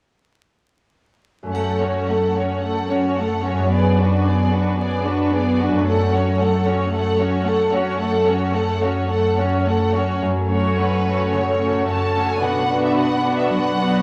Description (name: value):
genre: classical, dramatic, fast romantic movement for symphony orchestra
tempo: 110 BPM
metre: 4/4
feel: straight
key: F# minor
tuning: A4 = 443 Hz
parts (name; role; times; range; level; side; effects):
- concert harp; arpeggios; 1.4-14.0 s; F#2 to D5; -25 LUFS; equal; none
- bright symphonic violin section; melody; 1.5-14.0 s; B4 to A5; -29 LUFS; equal; none
- warm symphonic viola section; accompaniment; 1.5-14.0 s; A3 to D4; -25 LUFS; equal; none
- clear symphonic cello section; bass; 1.5-14.0 s; F#2 to B2; -28 LUFS; equal; none
- triangle; percussion; 1.5-2.6 s; none; -49 LUFS; equal; none
- rich studio violin section; second line; 1.6-14.0 s; F#4 to C#5; -26 LUFS; equal; none
room: wet recital hall reverb, RT60 1.4 s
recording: vinyl crackle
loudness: -19 LUFS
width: mono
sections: 1.5-10.2 A section; 10.2-14.0 B section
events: none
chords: 1.5 F#m; 3.7 G#m7b5/F#; 5.9 F#m; 12.4 Bm